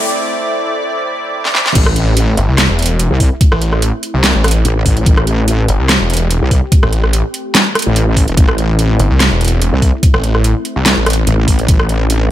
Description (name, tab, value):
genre	heavy wobble dubstep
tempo	145 BPM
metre	4/4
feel	swing 53% on 16ths, half-time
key	A minor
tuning	A4 = 439 Hz
part	lush unison pad	sustained chords	0.0-12.3 s	A2 to D5	-22 LUFS	equal	chorus, sidechain pumping
part	riser and sub drop	sound effects	0.0-3.4 s	none	-24 LUFS	equal	none
part	dubstep drum kit	drums	1.4-12.2 s	crash cymbal, hi-hat, rim click, snare drum	-15 LUFS	equal	none
part	wobble bass	bass	1.8-12.3 s	E1 to C2	-12 LUFS	equal	chorus, overdrive
part	electronic kick drum	drums	1.8-11.8 s	none	-11 LUFS	equal	none
part	snarling distorted saw bass	bass	2.4-11.3 s	E1 to C2	-13 LUFS	equal	overdrive
room	little or no reverb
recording	high-pass filter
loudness	-10 LUFS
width	side -13 dB against mid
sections	0.0-1.8 A section; 1.8-12.3 B section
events	build-up 0.0-1.8; break 0.1-1.8; drum fill 1.4-1.8; drop 1.8-12.3; impact 1.8-3.4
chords	0.0 Am